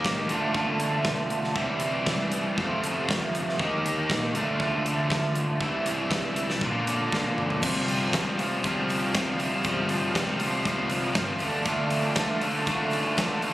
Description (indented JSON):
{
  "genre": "indie rock",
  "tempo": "119 BPM",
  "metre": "4/4",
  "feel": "straight",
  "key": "C mixolydian",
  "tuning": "A4 = 441 Hz",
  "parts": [
    { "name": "crunchy overdriven guitar", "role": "riff", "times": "0.0-13.5 s", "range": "F2 to G4", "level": "-28 LUFS", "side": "left 2 dB", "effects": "none" },
    { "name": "raw garage guitar", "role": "riff", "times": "0.0-13.5 s", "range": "F2 to G4", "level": "-29 LUFS", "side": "right 3 dB", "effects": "overdrive, ensemble chorus, slapback echo" },
    { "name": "big rock drum kit", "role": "drums", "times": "0.0-13.5 s", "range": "crash cymbal, hi-hat, kick drum, snare drum, toms", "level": "-30 LUFS", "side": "equal", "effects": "none" },
    { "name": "upright bass", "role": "bass", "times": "0.1-13.5 s", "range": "A1 to G2", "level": "-36 LUFS", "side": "equal", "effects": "none" },
    { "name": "tube shaker", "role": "percussion", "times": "7.6-13.5 s", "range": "none", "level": "-47 LUFS", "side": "right 1 dB", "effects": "none" }
  ],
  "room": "light reverb",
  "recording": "recorded on a phone in the room, studio reverb, compression",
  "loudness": "-24 LUFS",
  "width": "side -15 dB against mid",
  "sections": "0.0-7.6 A section; 7.6-13.5 B section",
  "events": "drum fill 7.1-7.6",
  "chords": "0.3 Dm; 1.6 C; 2.6 F; 3.6 Eb; 4.3 Dm; 5.6 C; 6.6 Bb; 7.6 Csus4; 11.4 Dm"
}